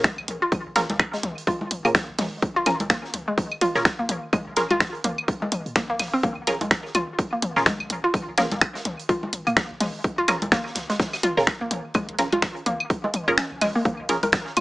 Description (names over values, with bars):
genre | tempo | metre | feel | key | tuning
minimal techno | 126 BPM | 4/4 | swing 58% on 16ths | Bb minor | A4 = 440 Hz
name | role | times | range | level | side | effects
hollow square pluck | riff | 0.0-14.6 s | Ab3 to Bb4 | -26 LUFS | equal | chorus, sidechain pumping, dub echo
filtered dub chord stab | stabs | 0.0-14.2 s | Db4 to Bb4 | -24 LUFS | right 1 dB | phaser, vintage 12-bit sampler grit, tape echo
electronic kick drum | drums | 0.0-14.4 s | none | -24 LUFS | equal | none
house drum kit | drums | 0.0-14.6 s | finger snaps, hi-hat | -23 LUFS | equal | none
huge arena drum kit | drums | 0.0-14.6 s | hi-hat, snare drum | -38 LUFS | right 1 dB | sidechain pumping on hats, high-pass filter on hats, high-pass filter on snare, high-pass filter on room
electronic toms, claves and congas | percussion | 0.0-14.6 s | none | -30 LUFS | left 1 dB | tape echo
punchy sub bass | bass | 0.2-14.6 s | F1 to Bb2 | -42 LUFS | equal | sidechain pumping
room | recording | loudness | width
moderate small room reverb, RT60 0.5 s | small speaker sound | -21 LUFS | side -19 dB against mid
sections
0.0-14.6 A section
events
kick drops out 13.4-13.9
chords
0.0 Bbm7